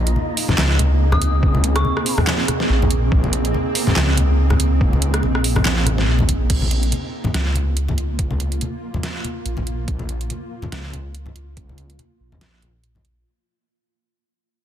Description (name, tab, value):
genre	deep dubstep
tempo	142 BPM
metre	4/4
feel	swing 56% on 16ths, half-time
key	Bb minor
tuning	A4 = 440 Hz
part	granular cloud pad	sustained chords	0.0-13.3 s	Bb3 to F4	-27 LUFS	right 1 dB	built-in reverb, vintage 12-bit sampler grit
part	dark detuned saw bass	bass	0.0-13.2 s	Bb1 to Db2	-19 LUFS	equal	tube saturation
part	wind-like tuned noise texture	texture	0.0-6.5 s	Eb4 to Ab4	-28 LUFS	right 2 dB	built-in reverb
part	dubstep drum kit	drums	0.1-13.1 s	crash cymbal, handclaps, hi-hat, rim click, snare drum	-23 LUFS	right 1 dB	none
part	congas	percussion	0.2-13.0 s	none	-24 LUFS	left 1 dB	none
part	dark detuned synth bell	melody	1.1-2.2 s	Db6 to Eb6	-29 LUFS	left 1 dB	chorus, dub echo
part	electronic kick drum	drums	1.4-11.7 s	none	-20 LUFS	equal	none
room	little or no reverb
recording	dense, heavily limited modern master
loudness	-16 LUFS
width	side -10 dB against mid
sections	0.0-6.5 A section; 6.5-13.3 B section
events	drop 0.0-6.5; fade-out 6.5-13.3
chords	0.0 Bbm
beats	0.16 0.58 1.00 | 1.43 1.85 2.27 2.69 | 3.12 3.54 3.96 4.38 | 4.81 5.23 5.65 6.08 | 6.50 6.92 7.34 7.76 | 8.19 8.61 9.03 9.46 | 9.88 10.30 10.72 11.15 | 11.57 11.99 12.41 12.84